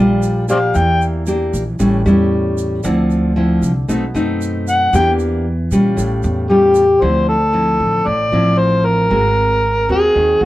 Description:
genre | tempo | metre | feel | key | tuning
bossa nova | 115 BPM | 4/4 | straight | D minor | A4 = 442 Hz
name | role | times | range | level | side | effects
nylon-string guitar | accompaniment | 0.0-10.5 s | A2 to A#4 | -16 LUFS | equal | none
upright bass | bass | 0.0-10.5 s | G#1 to Bb2 | -19 LUFS | right 1 dB | tube saturation
egg shaker | percussion | 0.2-7.0 s | none | -35 LUFS | right 6 dB | none
overdriven harmonica | melody | 0.5-1.0, 4.7-10.5 s | G4 to G5 | -14 LUFS | left 1 dB | none
room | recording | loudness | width
wet small room reverb, RT60 0.5 s | worn, warbling old tape, cassette tape, warbly pitch drift | -13 LUFS | side -16 dB against mid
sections
0.0-7.0 A section; 7.0-10.5 B section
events
harmonica solo 0.0-7.0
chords
0.0 Ebmaj9 (rootless); 0.7 Em7b5; 1.8 A7; 2.8 Dm9; 3.9 B7b9; 4.9 Em7b5; 6.0 A7b13; 7.0 Dm9; 9.1 G#9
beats
0.23 | 0.75 1.27 1.79 2.32 | 2.84 3.36 3.88 4.41 | 4.93 5.45 5.97 6.50 | 7.02 7.54 8.06 8.59 | 9.11 9.63 10.15

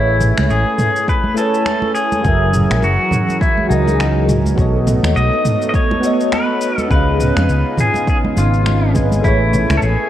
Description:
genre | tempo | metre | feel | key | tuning
sunset chillout | 103 BPM | 4/4 | swing 58% on 16ths | A lydian | A4 = 441 Hz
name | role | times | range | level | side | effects
pedal steel guitar | melody | 0.0-10.1 s | D#4 to D#5 | -19 LUFS | left 1 dB | ping-pong delay
soft electric-piano-like synth keys | accompaniment | 0.0-10.1 s | F#3 to G#5 | -20 LUFS | equal | chorus, phaser, auto-pan
lush unison pad | sustained chords | 0.0-10.1 s | C#3 to G#5 | -23 LUFS | right 1 dB | chorus, vintage 12-bit sampler grit
fretless electric bass | bass | 0.0-10.0 s | F#1 to E#2 | -16 LUFS | equal | none
deep house drum kit | drums | 0.2-10.0 s | finger snaps, shaker, toms | -23 LUFS | equal | overdrive, studio reverb
congas | percussion | 0.2-9.8 s | none | -26 LUFS | right 2 dB | none
electronic kick drum | drums | 1.1-9.4 s | none | -18 LUFS | equal | overdrive, studio reverb
room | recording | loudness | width
moderate lush hall reverb, RT60 1.9 s, digital ambience | worn, warbling old tape, cassette tape, warbly pitch drift | -13 LUFS | side -12 dB against mid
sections
0.0-10.1 A section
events
none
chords
0.0 Amaj7; 2.2 F#7; 4.6 B7; 6.9 C#7; 9.2 Amaj7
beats
0.50 1.08 1.66 | 2.25 2.83 3.41 3.99 | 4.58 5.16 5.74 6.32 | 6.91 7.49 8.07 8.65 | 9.24 9.82

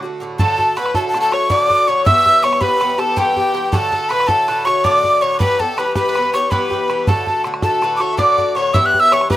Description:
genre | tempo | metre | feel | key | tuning
celtic folk, Celtic slip jig | 108 BPM (dotted quarters) | 9/8 | straight | D major | A4 = 438 Hz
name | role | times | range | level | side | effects
Irish bouzouki | accompaniment | 0.0-9.4 s | G2 to G4 | -23 LUFS | equal | none
breathy mid whistle | melody | 0.4-9.4 s | G5 to F#6 | -16 LUFS | right 1 dB | none
mandolin | second line | 0.4-9.4 s | G4 to E5 | -25 LUFS | right 3 dB | none
rich fiddle | second line | 0.4-9.4 s | G4 to E5 | -20 LUFS | left 4 dB | none
bodhran | percussion | 0.4-9.4 s | none | -20 LUFS | right 1 dB | none
room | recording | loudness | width
light reverb | rough home demo mix | -13 LUFS | side -14 dB against mid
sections
0.4-9.4 A section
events
none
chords
0.4 D; 2.1 Em; 3.7 D; 5.4 Em; 7.1 D; 8.7 Em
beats
| 0.40 0.95 1.51 | 2.06 2.62 3.17 | 3.73 4.29 4.84 | 5.40 5.96 6.51 | 7.07 7.63 8.18 | 8.74 9.30

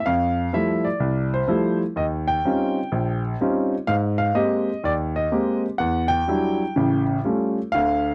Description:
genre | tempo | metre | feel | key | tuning
solo jazz | 125 BPM | 4/4 | swing 66% on 8ths | unclear | A4 = 440 Hz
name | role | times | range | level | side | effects
clear grand piano | solo | 0.0-8.1 s | A1 to G5 | -22 LUFS | equal | none
room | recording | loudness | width
light reverb | dry, close 1970s-style studio recording | -22 LUFS | mono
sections
0.0-8.1 A section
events
none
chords
0.0 Fmaj9; 2.0 Eb13; 3.9 Abmaj9; 5.8 Em9; 6.8 Aaug7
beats
| 0.04 0.52 1.00 1.48 | 1.96 2.44 2.92 3.40 | 3.87 4.35 4.83 5.31 | 5.79 6.27 6.75 7.23 | 7.71

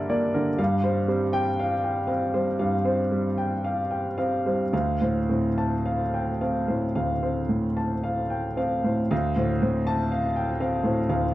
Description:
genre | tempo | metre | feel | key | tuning
neoclassical minimalist piano | 53-62 BPM | 4/4 | rubato | D minor | A4 = 440 Hz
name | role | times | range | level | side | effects
warm grand piano | solo | 0.0-11.3 s | D2 to A5 | -23 LUFS | equal | none
room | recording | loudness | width
light reverb | dry, close 1970s-style studio recording | -23 LUFS | side -15 dB against mid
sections
0.0-9.1 A section; 9.1-11.3 B section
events
none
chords
0.0 Gmadd9; 0.6 Csus4/G; 4.7 Dm7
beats
| 0.59 1.58 2.58 3.63 | 4.72 5.84 6.95 8.04 | 9.11 10.12 11.09

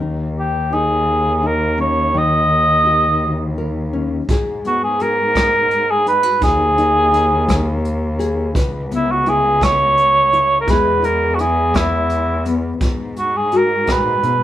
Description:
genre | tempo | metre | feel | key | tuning
folk | 56 BPM (dotted quarters) | 6/8 | straight | G# minor | A4 = 440 Hz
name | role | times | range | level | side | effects
nylon-string guitar | accompaniment | 0.0-14.4 s | G#2 to B4 | -22 LUFS | left 3 dB | none
dark cello | bass | 0.0-14.4 s | C#2 to G#2 | -22 LUFS | left 1 dB | none
mellow cor anglais | melody | 0.4-14.4 s | E4 to D#5 | -15 LUFS | right 1 dB | none
vintage brush drum kit | drums | 4.3-14.4 s | hi-hat, kick drum, rim click | -21 LUFS | equal | none
room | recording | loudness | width
moderate studio reverb, RT60 0.6 s | band playing live in one room | -14 LUFS | side -12 dB against mid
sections
0.0-4.3 A section; 4.3-14.4 B section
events
none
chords
0.0 D#7; 4.3 G#m; 6.4 D#sus4; 8.6 C#m7; 10.7 E; 12.8 G#m7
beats
| 0.01 1.08 | 2.15 3.21 | 4.28 5.35 | 6.42 7.49 | 8.55 9.62 | 10.68 11.75 | 12.81 13.88

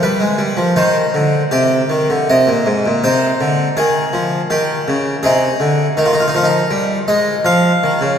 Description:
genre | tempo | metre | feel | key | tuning
classical, baroque-style suite movement for harpsichord | 82 BPM | 3/4 | rubato | unclear | A4 = 440 Hz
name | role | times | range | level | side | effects
harpsichord | solo | 0.0-8.2 s | Ab2 to F5 | -13 LUFS | equal | none
room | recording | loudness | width
wet cathedral reverb, RT60 4.5 s | recorded in a church or concert hall | -13 LUFS | side -8 dB against mid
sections
0.0-8.2 A section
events
none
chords
0.0 G7; 0.8 Cm; 3.0 Ab/C; 4.5 Eb7; 5.2 Ab5; 7.4 N.C.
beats
0.02 | 0.77 1.52 2.30 | 3.04 3.77 4.50 | 5.24 5.96 6.70 | 7.43 8.16

